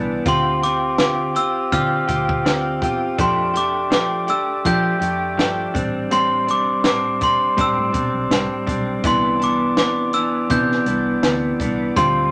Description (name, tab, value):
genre	indie pop, bedroom pop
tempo	82 BPM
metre	4/4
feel	swing 55% on 16ths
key	C major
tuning	A4 = 439 Hz
part	direct-recorded clean electric guitar	accompaniment	0.0-12.3 s	A2 to G4	-24 LUFS	equal	vibrato effect
part	vintage muted fingered electric bass	bass	0.0-12.3 s	A1 to F3	-30 LUFS	equal	none
part	glockenspiel with brass mallets	melody	0.3-12.3 s	C6 to G6	-23 LUFS	equal	none
part	compact cocktail drum kit	drums	0.3-12.2 s	hi-hat, kick drum, snare drum	-25 LUFS	equal	none
room	moderate studio ambience, RT60 0.4 s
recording	none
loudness	-19 LUFS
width	mono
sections	0.0-12.3 A section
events	none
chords	0.3 Dm11; 3.2 F69; 5.7 Am11; 9.0 Cmaj9